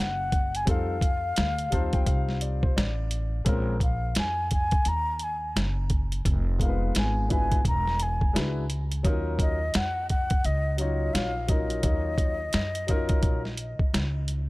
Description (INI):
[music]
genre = hip hop, jazz-hop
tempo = 86 BPM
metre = 4/4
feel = swing 62% on 16ths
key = Eb minor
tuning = A4 = 443 Hz
[part]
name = breathy mellow concert flute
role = melody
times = 0.0-13.9 s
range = Eb5 to Bb5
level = -31 LUFS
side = left 1 dB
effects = tape echo
[part]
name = upright bass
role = bass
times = 0.0-14.5 s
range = E1 to Gb2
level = -29 LUFS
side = equal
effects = none
[part]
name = boom bap sampler-style drum kit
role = drums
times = 0.3-14.5 s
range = hi-hat, kick drum, snare drum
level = -26 LUFS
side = equal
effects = none
[part]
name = dark baby grand piano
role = accompaniment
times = 0.7-13.4 s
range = Gb3 to A5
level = -32 LUFS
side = left 2 dB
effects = none
[sound]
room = little or no reverb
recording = none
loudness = -24 LUFS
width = side -21 dB against mid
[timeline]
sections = 0.0-14.5 A section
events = grand piano fill 1.4-3.5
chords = 0.0 N.C.; 0.7 F7; 3.5 Bb7(no3); 6.3 Fm7b5; 7.7 E9; 9.0 Ebm9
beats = | 0.68 1.37 2.07 2.77 | 3.47 4.16 4.86 5.56 | 6.26 6.96 7.65 8.35 | 9.05 9.74 10.44 11.14 | 11.84 12.54 13.23 13.93